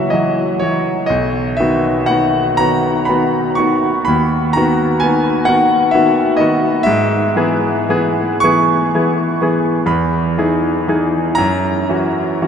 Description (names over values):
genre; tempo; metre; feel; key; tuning
classical, romantic nocturne for solo piano; 36-44 BPM (dotted quarters); 6/8; rubato; B major; A4 = 440 Hz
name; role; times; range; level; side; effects
bright concert grand piano; solo; 0.0-12.5 s; B1 to C#6; -13 LUFS; equal; none
room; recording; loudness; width
wet huge ambient reverb, RT60 7.7 s; in a vast, echoing space; -13 LUFS; side -7 dB against mid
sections
0.0-12.5 A section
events
none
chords
0.0 F#5/C#; 1.1 B; 4.1 B/D#; 6.9 E/G#; 9.9 Emaj7; 11.4 F#7